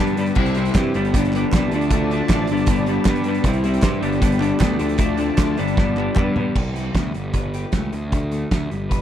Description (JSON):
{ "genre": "indie rock", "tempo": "155 BPM", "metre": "4/4", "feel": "straight", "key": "unclear", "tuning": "A4 = 438 Hz", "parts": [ { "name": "lush unison pad", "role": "sustained chords", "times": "0.0-6.5 s", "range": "B3 to A5", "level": "-31 LUFS", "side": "right 1 dB", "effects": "chorus" }, { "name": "raw garage guitar", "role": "riff", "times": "0.0-9.0 s", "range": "G2 to B4", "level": "-22 LUFS", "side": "left 2 dB", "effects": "overdrive" }, { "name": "fuzz picked electric bass", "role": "bass", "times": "0.0-9.0 s", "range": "G1 to G2", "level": "-24 LUFS", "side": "equal", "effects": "overdrive" }, { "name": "loose indie drum kit", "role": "drums", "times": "0.1-9.0 s", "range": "crash cymbal, hi-hat, kick drum, snare drum, toms", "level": "-21 LUFS", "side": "right 1 dB", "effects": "none" }, { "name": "group handclap", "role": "percussion", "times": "0.8-6.3 s", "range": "none", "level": "-35 LUFS", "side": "right 3 dB", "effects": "none" } ], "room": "little or no reverb", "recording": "none", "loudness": "-17 LUFS", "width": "side -10 dB against mid", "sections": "0.0-6.6 A section; 6.6-9.0 B section", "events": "drum fill 5.8-6.6", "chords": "0.4 Cmaj7; 0.9 Gadd9; 1.7 Dm7; 2.5 Gadd9; 3.5 Cmaj7; 4.0 Gadd9; 4.8 Dm7; 5.6 Gadd9; 6.6 C5; 7.1 Gadd9; 7.9 D5" }